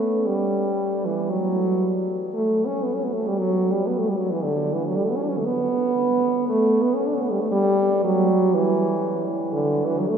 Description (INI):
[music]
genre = classical, free, expressive piece for unaccompanied French horn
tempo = 58 BPM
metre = 4/4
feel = rubato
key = unclear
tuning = A4 = 441 Hz
[part]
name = warm French horn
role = solo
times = 0.0-10.2 s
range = D3 to D4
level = -20 LUFS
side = right 1 dB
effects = none
[sound]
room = wet cathedral reverb, RT60 6.4 s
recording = small room ambience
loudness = -20 LUFS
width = side -7 dB against mid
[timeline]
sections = 0.0-10.2 A section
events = none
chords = none